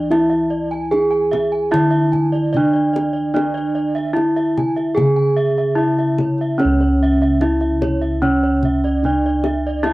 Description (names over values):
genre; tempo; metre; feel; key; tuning
Javanese gamelan; 74 BPM; 4/4; straight; unclear; A4 = 440 Hz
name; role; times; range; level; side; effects
gamelan-type bronze metallophone; melody; 0.0-9.9 s; C#4 to G#4; -17 LUFS; right 1 dB; cassette tape
gamelan-type bronze metallophone; arpeggios; 0.0-9.9 s; C#5 to G#5; -27 LUFS; right 4 dB; plate reverb
gamelan-type bossed gongs; bass; 0.0-9.9 s; C#2 to E4; -20 LUFS; equal; none
kendang; percussion; 0.1-9.9 s; none; -26 LUFS; left 2 dB; none
room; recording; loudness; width
moderate booth ambience, RT60 0.2 s; home recording on cassette; -15 LUFS; side -18 dB against mid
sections
0.0-9.9 A section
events
none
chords
none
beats
| 0.11 0.92 1.73 2.54 | 3.35 4.17 4.98 5.79 | 6.60 7.41 8.22 9.03 | 9.84